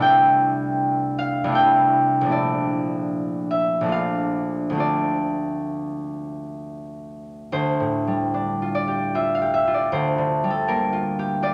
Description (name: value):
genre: classical, solo harp piece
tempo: 64-81 BPM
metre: 3/4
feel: rubato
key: D minor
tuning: A4 = 440 Hz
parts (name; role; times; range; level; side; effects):
- concert harp; solo; 0.0-11.5 s; Bb1 to A5; -22 LUFS; equal; none
room: wet large studio reverb, RT60 0.9 s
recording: none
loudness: -22 LUFS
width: mono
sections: 0.0-7.5 A section; 7.5-11.5 A section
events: none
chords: 0.0 C69; 2.3 Bbmaj7#11; 3.9 Bbmaj7; 4.8 Dm7; 7.5 Dm11; 9.9 Bb69/D